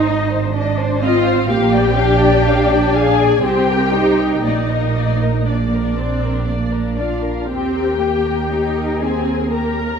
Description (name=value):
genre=classical, slow romantic movement for string orchestra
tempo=60 BPM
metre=3/4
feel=rubato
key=unclear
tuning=A4 = 440 Hz
part: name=muted symphonic violin section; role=melody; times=0.0-10.0 s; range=G4 to F5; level=-25 LUFS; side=left 6 dB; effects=none
part: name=muted symphonic violin section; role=second line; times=0.0-10.0 s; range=D5 to Bb5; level=-24 LUFS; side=left 5 dB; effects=none
part: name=muted symphonic viola section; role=accompaniment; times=0.0-10.0 s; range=D4 to Bb4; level=-19 LUFS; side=left 4 dB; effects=none
part: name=muted symphonic cello section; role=bass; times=0.0-10.0 s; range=Bb3 to Eb4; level=-20 LUFS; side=right 3 dB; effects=none
part: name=muted symphonic double bass section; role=bass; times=0.0-10.0 s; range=Ab1 to Eb2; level=-20 LUFS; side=right 4 dB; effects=none
room=moderate scoring stage reverb, RT60 1.7 s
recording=none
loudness=-14 LUFS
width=side -6 dB against mid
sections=0.0-10.0 A section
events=none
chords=0.0 Ab; 1.5 Bb; 3.4 Cm7; 4.4 Bb; 7.5 Eb